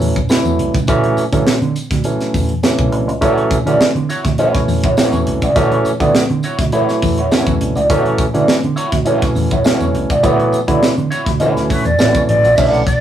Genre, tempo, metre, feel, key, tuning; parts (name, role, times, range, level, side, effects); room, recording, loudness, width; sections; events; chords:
funk; 103 BPM; 4/4; straight; A4 = 443 Hz
barky tine electric piano; stabs; 0.0-12.9 s; D3 to E4; -17 LUFS; right 2 dB; overdrive
vintage muted fingered electric bass; bass; 0.0-13.0 s; A1 to D3; -20 LUFS; equal
crisp fusion drum kit; drums; 0.0-13.0 s; crash cymbal, hi-hat, kick drum, snare drum; -17 LUFS; right 1 dB
tambourine; percussion; 0.0-13.0 s; -35 LUFS; equal
electric guitar at the edge of break-up; accompaniment; 3.2-12.9 s; E4 to D5; -18 LUFS; equal; wah
breathy silver concert flute; melody; 11.7-13.0 s; B4 to F#5; -15 LUFS; right 1 dB
moderate studio reverb, RT60 0.5 s; rough rehearsal-room recording, warm saturation; -12 LUFS; side -10 dB against mid
0.0-12.6 A section
break 0.0-3.2
0.0 Dmaj9